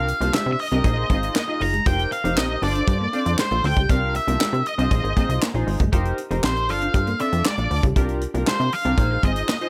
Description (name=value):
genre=early-eighties boogie funk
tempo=118 BPM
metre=4/4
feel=straight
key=unclear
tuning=A4 = 438 Hz
part: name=octave-fuzz lead guitar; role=melody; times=0.0-9.7 s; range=C5 to Bb5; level=-27 LUFS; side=equal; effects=distortion
part: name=chorused polysynth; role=accompaniment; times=0.0-9.7 s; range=D4 to Eb5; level=-31 LUFS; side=equal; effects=none
part: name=plucky analog bass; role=bass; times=0.0-9.4 s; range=F1 to C3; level=-26 LUFS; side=equal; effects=none
part: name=semi-hollow electric guitar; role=riff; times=0.1-9.6 s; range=G3 to F4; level=-33 LUFS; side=equal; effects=ensemble chorus
part: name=tight funk drum kit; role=drums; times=0.1-9.7 s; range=handclaps, hi-hat, kick drum, snare drum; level=-26 LUFS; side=equal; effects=none
room=studio reverb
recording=none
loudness=-21 LUFS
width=mono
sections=0.0-9.7 A section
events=none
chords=0.0 C9sus4; 0.8 Bb9sus4; 1.9 F9sus4; 2.6 G9sus4; 3.9 C9sus4; 4.9 Bb9sus4; 5.9 F9sus4; 6.7 G9sus4; 8.0 C9sus4; 9.0 Bb9sus4